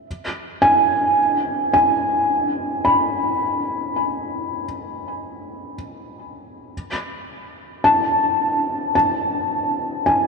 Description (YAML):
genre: ambient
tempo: 54 BPM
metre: 3/4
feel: straight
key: unclear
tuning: A4 = 439 Hz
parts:
  - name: felt-muted upright piano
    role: solo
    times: 0.0-10.3 s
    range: G#5 to B5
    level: -18 LUFS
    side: equal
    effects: ping-pong delay
room: wet cathedral reverb, RT60 5.2 s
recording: in a vast, echoing space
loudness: -17 LUFS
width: side -4 dB against mid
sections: 0.1-10.3 A section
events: none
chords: 0.1 G#m; 6.7 N.C.